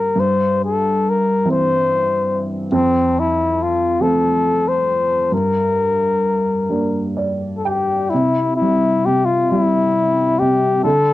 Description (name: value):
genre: celtic folk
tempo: 42-48 BPM (dotted quarters)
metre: 6/8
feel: rubato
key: unclear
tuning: A4 = 435 Hz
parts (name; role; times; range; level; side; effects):
- trumpet with bucket mute; melody; 0.0-11.1 s; C4 to C5; -17 LUFS; left 3 dB; cassette tape
- dark upright piano; accompaniment; 0.0-11.1 s; F2 to G5; -19 LUFS; right 1 dB; cassette tape
room: light reverb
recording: home recording on cassette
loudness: -15 LUFS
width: side -15 dB against mid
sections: 0.0-8.1 A section; 8.1-11.1 B section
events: upright piano fill 6.7-8.1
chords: 0.1 C/G; 2.7 F; 5.3 Gm; 8.1 C